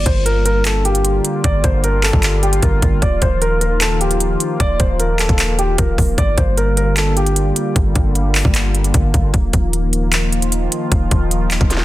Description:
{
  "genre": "hip hop, trap",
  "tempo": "152 BPM",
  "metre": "4/4",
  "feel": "half-time",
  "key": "G minor",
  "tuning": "A4 = 440 Hz",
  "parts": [
    { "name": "dark concert grand piano", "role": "melody", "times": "0.0-7.7 s", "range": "G4 to D5", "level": "-20 LUFS", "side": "equal", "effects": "none" },
    { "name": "sweeping resonant pad", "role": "sustained chords", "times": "0.0-11.8 s", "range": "D3 to F4", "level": "-22 LUFS", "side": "left 1 dB", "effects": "chorus" },
    { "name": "warm 808-style bass", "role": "bass", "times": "0.0-11.8 s", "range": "Eb1 to G1", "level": "-17 LUFS", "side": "equal", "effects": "none" },
    { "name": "trap drum kit", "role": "drums", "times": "0.1-11.8 s", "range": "handclaps, hi-hat, kick drum, snare drum", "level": "-17 LUFS", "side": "equal", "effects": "none" }
  ],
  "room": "digital ambience",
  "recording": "dense, heavily limited modern master",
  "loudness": "-13 LUFS",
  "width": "side -16 dB against mid",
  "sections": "0.0-11.8 A section",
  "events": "none",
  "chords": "0.0 Gm7; 3.0 Ebsus2; 6.2 Gm7; 9.3 Ebsus2"
}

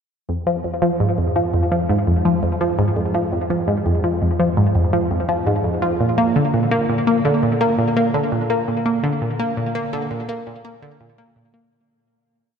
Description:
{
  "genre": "ambient",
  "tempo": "84 BPM",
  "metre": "4/4",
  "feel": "straight",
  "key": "F dorian",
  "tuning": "A4 = 438 Hz",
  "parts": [
    { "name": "analog pluck", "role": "solo", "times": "0.3-11.6 s", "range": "F2 to Bb3", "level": "-17 LUFS", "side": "equal", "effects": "chorus, phaser, tape echo" }
  ],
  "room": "wet cathedral reverb, RT60 6.2 s",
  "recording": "dreamy mix soaked in reverb",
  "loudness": "-17 LUFS",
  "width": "side -7 dB against mid",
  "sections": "0.3-11.7 A section",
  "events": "fade-out 7.9-11.7",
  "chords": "none"
}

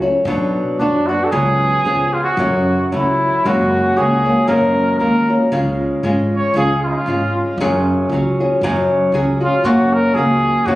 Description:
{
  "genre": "mexican folk, mariachi",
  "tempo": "116 BPM",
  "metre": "2/4",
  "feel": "swing 55% on 8ths",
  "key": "F# minor, F# major from 3.4 s",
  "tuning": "A4 = 440 Hz",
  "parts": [
    { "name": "nylon-string guitar", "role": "accompaniment", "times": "0.0-10.8 s", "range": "F#2 to G#4", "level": "-16 LUFS", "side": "equal", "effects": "none" },
    { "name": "upright bass", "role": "bass", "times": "0.0-10.8 s", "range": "G#1 to F#2", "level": "-23 LUFS", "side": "equal", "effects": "none" },
    { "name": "warm trumpet", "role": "melody", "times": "0.8-7.4, 9.4-10.8 s", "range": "D4 to C#5", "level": "-18 LUFS", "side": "equal", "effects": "tape echo" }
  ],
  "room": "moderate recital hall reverb, RT60 1.4 s",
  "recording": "recorded on a phone in the room, club reverb",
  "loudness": "-14 LUFS",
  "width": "side -17 dB against mid",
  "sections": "0.0-3.4 A section; 3.4-10.8 B section",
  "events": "none",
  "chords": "0.3 Bm; 1.3 C#7sus4; 1.8 C#7; 2.4 F#m; 3.4 F#add9; 5.5 C#; 7.6 F#sus2; 9.6 F#"
}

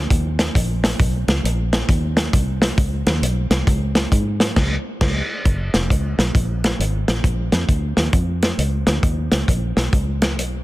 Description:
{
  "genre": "uptempo gospel",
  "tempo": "134 BPM",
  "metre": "4/4",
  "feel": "swing 64% on 8ths",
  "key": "F# major",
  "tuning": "A4 = 439 Hz",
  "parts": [
    { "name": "fingered electric bass", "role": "bass", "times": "0.0-10.6 s", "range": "E#1 to G#2", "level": "-21 LUFS", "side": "equal", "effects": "none" },
    { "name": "warm soul drum kit", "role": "drums", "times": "0.1-10.5 s", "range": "crash cymbal, hi-hat, kick drum, snare drum", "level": "-18 LUFS", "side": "equal", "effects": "none" }
  ],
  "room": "light reverb",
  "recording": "dense, heavily limited modern master",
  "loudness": "-17 LUFS",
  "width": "side -18 dB against mid",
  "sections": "0.0-5.5 A section; 5.5-10.6 B section",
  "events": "band accent 4.6-5.5",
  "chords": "none"
}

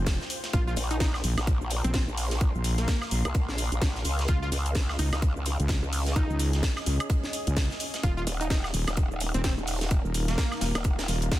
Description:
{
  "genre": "bass house",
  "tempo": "128 BPM",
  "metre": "4/4",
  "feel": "swing 59% on 16ths",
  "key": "unclear",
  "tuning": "A4 = 440 Hz",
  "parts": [
    { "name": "wobble bass", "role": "bass", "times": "0.0-11.3 s", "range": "Eb1 to Db2", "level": "-27 LUFS", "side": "equal", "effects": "chorus, overdrive, sidechain pumping" },
    { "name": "downlifter and swell", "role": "sound effects", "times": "0.4-0.5, 11.1-11.4 s", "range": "none", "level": "-47 LUFS", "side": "right 2 dB", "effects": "none" },
    { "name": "granular cloud pad", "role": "texture", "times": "0.0-11.4 s", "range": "Db4 to C6", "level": "-39 LUFS", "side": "equal", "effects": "built-in reverb, sidechain pumping" },
    { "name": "electronic kick drum", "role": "drums", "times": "0.1-11.4 s", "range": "none", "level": "-28 LUFS", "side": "equal", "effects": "none" },
    { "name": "garage drum kit", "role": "drums", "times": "0.1-11.4 s", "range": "cabasa, hi-hat, snare drum, woodblock", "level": "-33 LUFS", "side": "equal", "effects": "none" },
    { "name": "tight metal drum kit", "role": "drums", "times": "0.1-11.4 s", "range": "hi-hat, snare drum", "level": "-40 LUFS", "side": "right 2 dB", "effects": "high-pass filter on hats, high-pass filter on snare, high-pass filter on room" },
    { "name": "plucky unison lead", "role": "melody", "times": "0.5-10.9 s", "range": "Bb3 to F4", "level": "-36 LUFS", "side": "equal", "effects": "tape echo" },
    { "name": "growl bass", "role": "bass", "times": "0.8-11.4 s", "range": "Eb1 to Db2", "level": "-29 LUFS", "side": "equal", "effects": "chorus, tube saturation, sidechain pumping" }
  ],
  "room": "little or no reverb",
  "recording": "dense, heavily limited modern master",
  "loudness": "-25 LUFS",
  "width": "side -15 dB against mid",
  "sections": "0.0-11.4 A section",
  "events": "swell 11.1-11.4",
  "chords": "0.0 F5; 0.5 Bb5; 4.3 Db; 8.0 Eb5"
}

